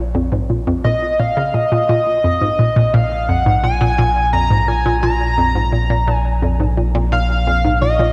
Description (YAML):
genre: ambient, sequencer-driven space music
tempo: 86 BPM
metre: 4/4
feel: straight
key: unclear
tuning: A4 = 440 Hz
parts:
  - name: round analog bass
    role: bass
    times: 0.0-8.1 s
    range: Bb1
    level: -22 LUFS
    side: equal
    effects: none
  - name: hollow square pluck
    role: riff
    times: 0.1-8.1 s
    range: F2 to Db3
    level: -20 LUFS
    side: equal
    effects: chorus, phaser, tape echo
  - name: pulse-width lead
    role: melody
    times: 0.8-8.1 s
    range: Eb5 to Bb5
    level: -20 LUFS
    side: equal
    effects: chorus, cassette tape, tape echo
room: wet lush hall reverb, RT60 2.8 s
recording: dark, warm production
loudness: -16 LUFS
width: mono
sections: 0.0-8.1 A section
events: none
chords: 0.0 Bb5